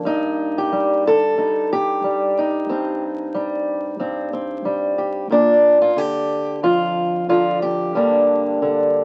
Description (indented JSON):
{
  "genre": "folk, solo fingerstyle acoustic guitar",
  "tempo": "91 BPM",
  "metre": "4/4",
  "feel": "rubato",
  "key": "unclear",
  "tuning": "A4 = 441 Hz",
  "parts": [
    { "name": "fingerpicked acoustic archtop guitar", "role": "solo", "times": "0.0-9.0 s", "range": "F2 to A4", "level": "-19 LUFS", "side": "equal", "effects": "none" }
  ],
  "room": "light reverb",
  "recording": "very old 78 rpm record, vinyl crackle",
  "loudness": "-19 LUFS",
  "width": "mono",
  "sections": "0.0-9.0 A section",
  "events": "none",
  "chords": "0.0 Eb6/G; 5.3 Bb; 8.0 Gm",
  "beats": "| 0.05 0.72 1.38 2.04 | 2.70 3.35 4.00 4.66 | 5.31 5.97 6.63 7.30 | 7.96 8.63"
}